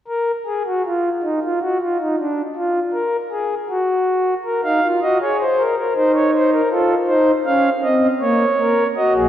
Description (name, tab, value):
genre	classical, baroque-style 4-part fugue for pipe organ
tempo	79 BPM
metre	3/4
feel	straight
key	unclear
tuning	A4 = 440 Hz
part	pipe organ, principal	solo	0.1-9.3 s	Bb1 to F5	-16 LUFS	equal	none
room	wet church reverb, RT60 2.8 s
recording	worn, warbling old tape, cassette tape, warbly pitch drift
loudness	-16 LUFS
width	side -11 dB against mid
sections	0.0-9.3 A section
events	none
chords	0.0 N.C.; 4.4 Bbm; 6.0 Cm7/Eb; 6.7 F7; 8.2 Bbm